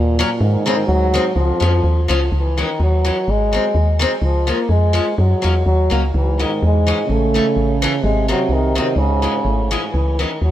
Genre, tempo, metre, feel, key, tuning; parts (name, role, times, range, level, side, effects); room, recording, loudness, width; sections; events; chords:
alpine folk, alpine dance band; 126 BPM; 2/4; swing 54% on 8ths, rubato; C# harmonic minor; A4 = 441 Hz
dark euphonium; second line; 0.0-2.1, 6.1-9.9 s; F2 to C#3; -22 LUFS; right 4 dB; analog delay
woody FM bass; bass; 0.0-10.5 s; G#1 to Ab2; -17 LUFS; equal
picked acoustic archtop guitar; accompaniment; 0.2-10.3 s; Eb3 to Db4; -23 LUFS; left 3 dB; analog delay
clear euphonium; melody; 0.4-10.5 s; C#3 to A#3; -20 LUFS; equal; analog delay
light reverb; echo-heavy mix; -14 LUFS; side -12 dB against mid
0.0-2.3 A section; 2.3-9.9 B section
0.4 Ab; 1.3 Dbadd9; 2.3 C#madd9; 3.3 G#; 4.2 C#; 5.2 F#; 6.1 C#m; 7.1 A; 8.0 G#; 9.0 C#m; 9.9 C#madd9